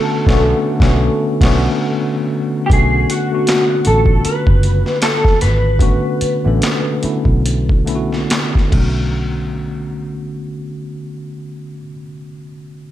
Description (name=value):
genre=R&B, neo-soul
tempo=67-79 BPM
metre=4/4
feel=swing 60% on 16ths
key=B dorian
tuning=A4 = 440 Hz
part: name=electric guitar through a small old amp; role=melody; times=0.0-8.3 s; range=F#4 to B4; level=-19 LUFS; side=left 1 dB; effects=ensemble chorus, slapback echo
part: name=tine electric piano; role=accompaniment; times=0.0-12.9 s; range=D3 to A4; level=-19 LUFS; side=left 1 dB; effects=medium stereo tremolo
part: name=vintage muted fingered electric bass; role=bass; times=0.3-11.8 s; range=F#1 to B1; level=-16 LUFS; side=equal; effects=none
part: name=boom bap sampler-style drum kit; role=drums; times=0.3-9.0 s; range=crash cymbal, handclaps, hi-hat, kick drum, snare drum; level=-17 LUFS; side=equal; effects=none
room=digital ambience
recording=faint mains hum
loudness=-13 LUFS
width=side -13 dB against mid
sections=0.0-2.7 A section; 2.7-9.2 B section; 9.2-12.7 C section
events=band accent 0.0-2.7; slowing down 2.7-9.2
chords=0.0 Bm9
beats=0.42 1.18 1.94 | 2.70 3.46 4.23 5.01 | 5.80 6.61 7.43 8.29 | 9.16 10.06 10.95 11.85